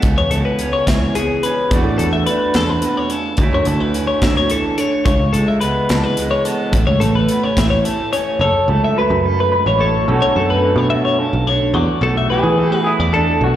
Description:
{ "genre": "math rock and midwest emo", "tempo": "72 BPM (dotted quarters)", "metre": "6/8", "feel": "straight", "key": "A major", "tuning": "A4 = 441 Hz", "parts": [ { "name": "electric guitar through a small old amp", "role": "accompaniment", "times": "0.0-13.6 s", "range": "E2 to F#4", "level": "-21 LUFS", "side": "right 4 dB", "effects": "slapback echo" }, { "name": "twelve-string electric guitar", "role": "arpeggios", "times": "0.0-13.4 s", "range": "G#4 to E5", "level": "-19 LUFS", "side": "left 3 dB", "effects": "slapback echo" }, { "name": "picked electric bass", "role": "bass", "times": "0.0-13.5 s", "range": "F#1 to E3", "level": "-18 LUFS", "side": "equal", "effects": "none" }, { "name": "modern studio drum kit", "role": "drums", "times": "0.0-8.3 s", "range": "hi-hat, kick drum, snare drum", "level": "-20 LUFS", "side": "equal", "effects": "none" }, { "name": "electric guitar through a small old amp", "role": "melody", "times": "8.4-13.6 s", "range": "F#4 to C#5", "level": "-20 LUFS", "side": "equal", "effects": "slapback echo, tape echo" } ], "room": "light reverb, small room ambience", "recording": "live gig heard through the venue's PA, recital hall reverb", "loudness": "-14 LUFS", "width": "side -11 dB against mid", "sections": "0.0-8.4 A section; 8.4-13.6 B section", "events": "none", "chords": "0.0 Amaj9/C# (rootless); 1.7 E9sus4; 3.4 Dmaj9; 5.1 Amaj9/C#; 6.7 A; 8.4 F#madd9; 10.1 Bm9; 11.7 E7sus4" }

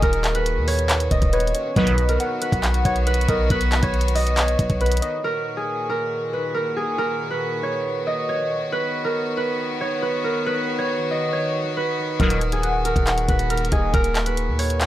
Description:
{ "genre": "hip hop, trap", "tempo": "138 BPM", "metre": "4/4", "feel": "half-time", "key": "Eb minor", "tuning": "A4 = 438 Hz", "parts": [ { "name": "concert harp", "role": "melody", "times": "0.0-14.9 s", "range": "Ab4 to Eb5", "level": "-23 LUFS", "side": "right 2 dB", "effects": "none" }, { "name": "rich chamber string section", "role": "sustained chords", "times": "0.0-14.9 s", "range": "Bb2 to Gb4", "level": "-29 LUFS", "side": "left 4 dB", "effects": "none" }, { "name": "warm 808-style bass", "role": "bass", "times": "0.0-5.0, 12.2-14.9 s", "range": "Eb1 to Eb2", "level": "-22 LUFS", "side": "equal", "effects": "none" }, { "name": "trap drum kit", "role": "drums", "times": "0.0-5.1, 12.2-14.9 s", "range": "handclaps, hi-hat, kick drum", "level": "-23 LUFS", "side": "equal", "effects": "none" }, { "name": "warm velvety synth lead", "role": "second line", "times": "1.3-5.2, 12.2-13.9 s", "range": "Cb5 to F#5", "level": "-28 LUFS", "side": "left 1 dB", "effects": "chorus, tremolo, analog delay" }, { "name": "resonant sweep polysynth", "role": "stabs", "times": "1.8-1.9, 12.2-12.4 s", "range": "D#2 to F#3", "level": "-25 LUFS", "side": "equal", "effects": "chorus, phaser, analog delay" } ], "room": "little or no reverb", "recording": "dry, gritty hardware recording", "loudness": "-19 LUFS", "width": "side -13 dB against mid", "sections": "0.0-5.2 A section; 5.2-14.9 A section", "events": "none", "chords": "0.0 Ebm; 1.8 B; 5.2 Ebm; 8.7 B; 12.2 Ebm" }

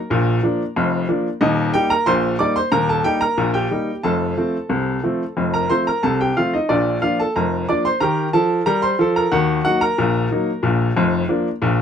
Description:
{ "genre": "ragtime piano", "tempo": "91 BPM", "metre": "2/4", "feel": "straight", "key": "Bb major", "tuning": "A4 = 440 Hz", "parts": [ { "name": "bright upright piano", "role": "solo", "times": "0.0-11.8 s", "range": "Eb1 to D6", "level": "-16 LUFS", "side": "equal", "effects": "none" } ], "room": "light reverb", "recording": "none", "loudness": "-16 LUFS", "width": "side -8 dB against mid", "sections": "0.0-11.8 A section", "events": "none", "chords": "0.1 Bb; 1.4 Eb; 4.0 F; 6.7 Bb; 8.0 Eb; 9.3 Ebm; 10.6 Bb" }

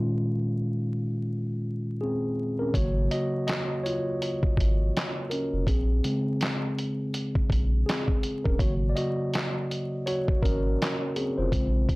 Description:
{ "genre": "lo-fi hip hop", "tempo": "82 BPM", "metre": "4/4", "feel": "swing 60% on 16ths", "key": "unclear", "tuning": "A4 = 440 Hz", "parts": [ { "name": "mellow tine electric piano", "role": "accompaniment", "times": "0.0-12.0 s", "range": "Bb2 to Eb5", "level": "-28 LUFS", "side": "equal", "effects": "none" }, { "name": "saturated sub bass", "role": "bass", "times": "2.7-11.9 s", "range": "Eb1 to Bb1", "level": "-26 LUFS", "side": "equal", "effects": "none" }, { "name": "lo-fi sampler-style drum kit", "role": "drums", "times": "2.7-12.0 s", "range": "handclaps, hi-hat, kick drum, snare drum", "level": "-28 LUFS", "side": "equal", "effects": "none" } ], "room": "light reverb", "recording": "dry, gritty hardware recording, vinyl crackle", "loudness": "-25 LUFS", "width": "side -23 dB against mid", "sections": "0.0-2.7 A section; 2.7-12.0 B section", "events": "tine electric piano solo 2.7-12.0", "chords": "0.0 Bbm9; 2.7 Ab7sus4; 5.7 Bbm9; 8.6 Ab7sus4" }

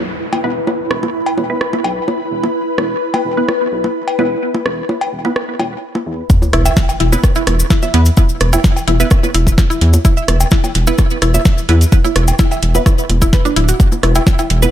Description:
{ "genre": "minimal techno", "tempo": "128 BPM", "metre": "4/4", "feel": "straight", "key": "unclear", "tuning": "A4 = 440 Hz", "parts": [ { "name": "rubbery square bass", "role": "bass", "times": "0.0-14.7 s", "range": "D1 to E2", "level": "-14 LUFS", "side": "equal", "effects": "sidechain pumping, high-pass filter" }, { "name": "downlifter and sub drop", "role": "sound effects", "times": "0.0-2.5, 6.4-8.2 s", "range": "none", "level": "-24 LUFS", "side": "equal", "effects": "none" }, { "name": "ethereal airy pad", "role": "texture", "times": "0.0-6.3 s", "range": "E4 to B5", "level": "-20 LUFS", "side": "left 1 dB", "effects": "ensemble chorus, built-in reverb, sidechain pumping" }, { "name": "electronic cowbell, bongos and rim click", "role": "percussion", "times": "0.3-14.7 s", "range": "none", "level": "-20 LUFS", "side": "equal", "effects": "tape echo" }, { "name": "filtered dub chord stab", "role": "stabs", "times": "0.4-14.7 s", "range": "B3 to B4", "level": "-21 LUFS", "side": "right 3 dB", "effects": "phaser, tape echo" }, { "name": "electronic kick drum", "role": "drums", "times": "6.3-14.4 s", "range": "none", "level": "-12 LUFS", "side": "equal", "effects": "none" }, { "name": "cabasa", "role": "percussion", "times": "6.3-14.7 s", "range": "none", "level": "-26 LUFS", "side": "left 4 dB", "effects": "tape echo" }, { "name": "mallet-like synth pluck", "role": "riff", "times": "6.5-14.4 s", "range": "D4 to E5", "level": "-20 LUFS", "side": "right 1 dB", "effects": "chorus, sidechain pumping, tape echo" }, { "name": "booming analog drum machine", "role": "drums", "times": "6.5-14.6 s", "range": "hi-hat, snare drum", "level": "-20 LUFS", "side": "equal", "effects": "low-pass filter on hats, low-pass filter on snare, tape echo" } ], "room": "digital ambience", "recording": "echo-heavy mix", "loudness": "-12 LUFS", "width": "side -11 dB against mid", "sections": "0.0-6.3 A section; 6.3-14.7 B section", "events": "drop 6.3-14.7; impact 6.3-8.2", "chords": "0.0 E5" }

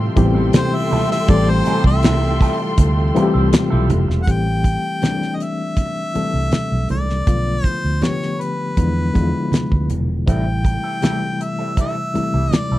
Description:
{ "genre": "lush 1970s-style soul", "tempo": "80 BPM", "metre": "4/4", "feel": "straight", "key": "A minor", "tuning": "A4 = 440 Hz", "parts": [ { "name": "warm symphonic string section", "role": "second line", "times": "0.0-4.2 s", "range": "A4 to C6", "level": "-26 LUFS", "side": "left 1 dB", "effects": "none" }, { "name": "barky reed electric piano", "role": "accompaniment", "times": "0.0-12.8 s", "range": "C3 to A4", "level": "-21 LUFS", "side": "left 3 dB", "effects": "overdrive, fast tremolo" }, { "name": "tonewheel organ", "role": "sustained chords", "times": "0.0-4.2 s", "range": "C3 to F4", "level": "-27 LUFS", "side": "right 1 dB", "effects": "slow rotary speaker" }, { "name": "vintage muted fingered electric bass", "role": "bass", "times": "0.0-12.8 s", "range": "E1 to E2", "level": "-19 LUFS", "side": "right 1 dB", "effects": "none" }, { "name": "electric guitar through a small old amp", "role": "riff", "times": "0.2-4.1, 10.3-12.8 s", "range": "G3 to A4", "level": "-29 LUFS", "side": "right 4 dB", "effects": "wah" }, { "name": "damped 70s drum kit", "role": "drums", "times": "0.2-12.7 s", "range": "hi-hat, kick drum, snare drum", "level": "-16 LUFS", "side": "equal", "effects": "none" }, { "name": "congas", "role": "percussion", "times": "0.2-12.7 s", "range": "none", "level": "-26 LUFS", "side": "right 3 dB", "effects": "none" }, { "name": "clear harmonica", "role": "melody", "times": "0.6-12.8 s", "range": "B4 to G5", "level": "-24 LUFS", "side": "left 1 dB", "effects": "none" } ], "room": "studio reverb", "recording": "dry, close 1970s-style studio recording", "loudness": "-16 LUFS", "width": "side -15 dB against mid", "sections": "0.0-4.3 A section; 4.3-12.8 B section", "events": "harmonica solo 0.0-4.3", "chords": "0.0 Am7; 7.3 Bm7b5; 8.8 E7b9; 10.3 Am7" }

